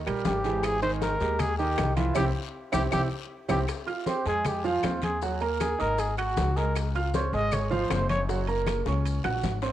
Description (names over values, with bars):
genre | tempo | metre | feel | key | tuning
Afro-Cuban jazz | 157 BPM | 4/4 | straight | F minor | A4 = 440 Hz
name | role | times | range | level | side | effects
upright bass | bass | 0.0-9.7 s | Gb1 to F2 | -30 LUFS | left 2 dB | none
warm concert grand piano | accompaniment | 0.1-9.7 s | Eb3 to Gb6 | -30 LUFS | right 6 dB | cassette tape
claves | percussion | 0.1-9.4 s | none | -39 LUFS | left 11 dB | none
congas | percussion | 0.1-9.7 s | none | -34 LUFS | left 2 dB | none
maracas | percussion | 0.1-9.7 s | none | -47 LUFS | left 12 dB | none
timbales | percussion | 0.1-9.6 s | none | -40 LUFS | right 8 dB | none
guiro | percussion | 0.2-9.7 s | none | -45 LUFS | left 12 dB | none
breathy trumpet | melody | 0.3-8.2 s | F4 to Eb5 | -30 LUFS | equal | none
bongos | percussion | 0.3-9.7 s | none | -38 LUFS | left 11 dB | none
room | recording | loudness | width
moderate spring reverb, RT60 2.0 s | home recording on cassette | -25 LUFS | side -12 dB against mid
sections
0.0-3.7 A section; 3.7-9.7 B section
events
drum fill 2.2-3.7, 8.9-9.7; band accent 2.2-3.7; trumpet solo 3.7-9.7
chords
0.0 Eb (rootless); 0.6 Abmaj9; 2.2 C; 3.7 Fm7; 5.2 Ebm; 6.0 Ab5; 6.8 Dbmaj7; 8.3 Gbadd9